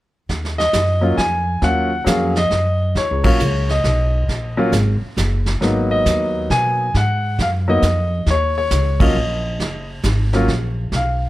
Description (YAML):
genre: jazz piano trio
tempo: 135 BPM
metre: 3/4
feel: swing 66% on 8ths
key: Eb minor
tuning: A4 = 440 Hz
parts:
  - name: upright bass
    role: bass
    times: 0.3-11.3 s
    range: Gb1 to Cb3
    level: -19 LUFS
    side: equal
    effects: none
  - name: vintage brush drum kit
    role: drums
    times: 0.3-11.3 s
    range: brushed snare drum, hi-hat, kick drum, ride cymbal, snare drum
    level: -22 LUFS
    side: right 1 dB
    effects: none
  - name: clear baby grand piano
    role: melody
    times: 0.6-11.3 s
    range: Gb3 to Ab5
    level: -18 LUFS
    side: left 1 dB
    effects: none
room: little or no reverb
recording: none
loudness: -16 LUFS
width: side -16 dB against mid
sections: 0.3-11.3 A section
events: band accent 3.2, 8.9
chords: 0.3 Ebm7; 5.6 Abm7; 8.3 Ebm7